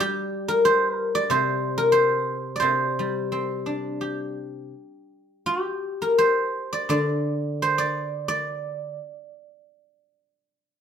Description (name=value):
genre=chinese traditional, Chinese solo plucked strings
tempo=81-93 BPM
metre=4/4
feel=rubato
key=G yu mode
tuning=A4 = 441 Hz
part: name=guzheng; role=solo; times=0.0-10.3 s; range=C3 to D5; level=-22 LUFS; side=equal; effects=none
room=moderate studio reverb, RT60 0.9 s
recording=band playing live in one room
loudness=-22 LUFS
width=side -8 dB against mid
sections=0.0-10.8 A section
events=none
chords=none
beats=0.66 1.32 1.97 | 2.65 3.33 4.02 4.73 | 5.46 6.19 6.91 7.61 | 8.29 8.97 9.66